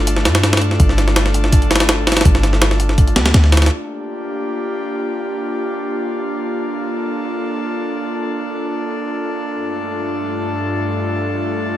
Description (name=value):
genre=drum and bass, jungle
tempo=165 BPM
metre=4/4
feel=straight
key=G minor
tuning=A4 = 440 Hz
part: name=airy breathy pad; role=sustained chords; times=0.0-11.8 s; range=G2 to A4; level=-21 LUFS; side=equal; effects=chorus
part: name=warm 808-style bass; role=bass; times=0.0-3.7 s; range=G1 to G2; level=-15 LUFS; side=equal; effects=none
part: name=jungle sampler-style drum kit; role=drums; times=0.1-3.7 s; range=hi-hat, kick drum, snare drum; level=-14 LUFS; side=equal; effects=small room reverb
room=light reverb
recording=none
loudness=-15 LUFS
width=side -13 dB against mid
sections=0.0-3.7 A section; 3.7-11.8 B section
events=none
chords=0.0 Dm/G; 3.7 Gm7; 9.5 Dm/G